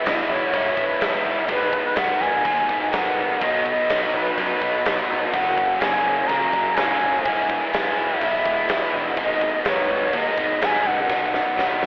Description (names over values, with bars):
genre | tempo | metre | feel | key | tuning
rock, shoegaze and dream pop | 125 BPM | 4/4 | straight | unclear | A4 = 440 Hz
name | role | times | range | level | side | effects
breathy bright shakuhachi | melody | 0.0-11.9 s | B4 to A#5 | -22 LUFS | equal | analog delay
overdriven electric guitar | riff | 0.0-11.9 s | F#2 to E4 | -22 LUFS | equal | wide subtle chorus
fuzz picked electric bass | bass | 0.1-11.9 s | E1 to F#2 | -31 LUFS | equal | overdrive
huge arena drum kit | drums | 0.1-11.9 s | crash cymbal, kick drum, snare drum | -25 LUFS | equal | none
room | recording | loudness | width
moderate recital hall reverb, RT60 1.4 s | telephone sound | -18 LUFS | side -30 dB against mid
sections
0.0-11.9 A section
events
drum fill 11.1-11.9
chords
0.0 E6; 1.5 G#m7; 3.4 B; 5.3 F#add9; 7.3 E; 9.2 G#m; 11.1 B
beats
0.06 0.53 1.01 | 1.49 1.97 2.45 2.93 | 3.41 3.89 4.37 4.85 | 5.33 5.81 6.29 6.77 | 7.25 7.73 8.21 8.69 | 9.17 9.65 10.13 10.61 | 11.09 11.57